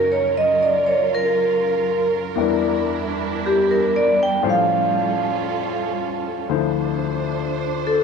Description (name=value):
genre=jazz ballad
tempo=58 BPM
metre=4/4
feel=swing 66% on 8ths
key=unclear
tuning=A4 = 440 Hz
part: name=vibraphone with medium hard mallets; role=melody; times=0.0-8.0 s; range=G4 to G5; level=-19 LUFS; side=right 1 dB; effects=none
part: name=warm grand piano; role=accompaniment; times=0.0-8.0 s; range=D2 to B#4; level=-24 LUFS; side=left 12 dB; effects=none
part: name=warm symphonic string section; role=sustained chords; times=0.0-8.0 s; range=Gb3 to C5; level=-26 LUFS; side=right 12 dB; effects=none
room=moderate plate reverb, RT60 2.4 s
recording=1960s-style stereo with parts hard left and right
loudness=-18 LUFS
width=side -5 dB against mid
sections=0.0-8.0 A section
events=vibraphone solo 0.0-8.0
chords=0.0 Gb6; 2.4 Em7b5; 4.4 A7alt; 6.5 Dm9